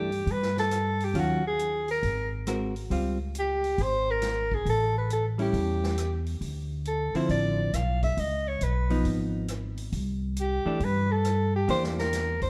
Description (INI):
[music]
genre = jazz, small-group swing and bop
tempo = 137 BPM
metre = 4/4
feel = swing 66% on 8ths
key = unclear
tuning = A4 = 440 Hz
[part]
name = warm soprano saxophone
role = melody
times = 0.0-12.5 s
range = Gb4 to F5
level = -31 LUFS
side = equal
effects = none
[part]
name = hollow-body jazz guitar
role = accompaniment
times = 0.0-12.4 s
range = D3 to Bb4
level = -33 LUFS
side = equal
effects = none
[part]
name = upright bass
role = bass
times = 0.0-12.5 s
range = Ab1 to G2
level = -32 LUFS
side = equal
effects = none
[part]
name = swinging big-band drum kit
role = drums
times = 0.1-12.5 s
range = hi-hat, kick drum, rim click, snare drum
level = -42 LUFS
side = equal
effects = none
[sound]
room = light reverb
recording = dark, warm production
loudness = -28 LUFS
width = mono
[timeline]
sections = 0.0-12.5 A section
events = none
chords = 0.0 C5 (rootless); 1.2 Ebm9; 2.0 Ab9; 2.9 Dbmaj7#11; 4.7 A7; 6.4 Dm9; 8.2 Db9; 9.9 C5; 11.7 Em7b5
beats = 0.28 0.72 | 1.16 1.59 2.03 2.47 | 2.91 3.35 3.79 4.23 | 4.67 5.11 5.54 5.98 | 6.42 6.86 7.30 7.74 | 8.18 8.62 9.05 9.49 | 9.93 10.37 10.81 11.25 | 11.69 12.13